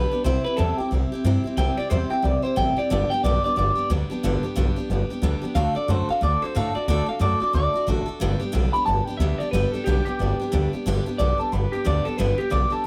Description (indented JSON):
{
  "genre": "rockabilly",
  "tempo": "181 BPM",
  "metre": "4/4",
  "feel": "swing 62% on 8ths",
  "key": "G major",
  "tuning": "A4 = 440 Hz",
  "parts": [
    { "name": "electric guitar through a small old amp", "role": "melody", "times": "0.0-12.9 s", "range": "G4 to B5", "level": "-27 LUFS", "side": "equal", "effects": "phaser, tape echo" },
    { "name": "picked steel-string acoustic guitar", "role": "accompaniment", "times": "0.0-12.9 s", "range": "G2 to A4", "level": "-29 LUFS", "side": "equal", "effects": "none" },
    { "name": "upright bass", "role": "bass", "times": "0.0-12.8 s", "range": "G1 to A2", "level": "-26 LUFS", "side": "equal", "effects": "none" }
  ],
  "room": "little or no reverb",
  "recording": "none",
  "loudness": "-23 LUFS",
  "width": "mono",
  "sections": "0.0-10.9 A section; 10.9-12.9 B section",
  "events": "clean electric guitar solo 0.0-10.9",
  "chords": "0.2 C; 2.9 G; 5.6 D; 8.2 G",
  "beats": "| 0.25 0.58 0.91 1.25 | 1.58 1.91 2.24 2.57 | 2.90 3.24 3.57 3.90 | 4.23 4.56 4.90 5.23 | 5.56 5.89 6.22 6.55 | 6.88 7.22 7.55 7.88 | 8.21 8.54 8.87 9.20 | 9.53 9.87 10.20 10.53 | 10.86 11.19 11.52 11.85 | 12.19 12.52 12.85"
}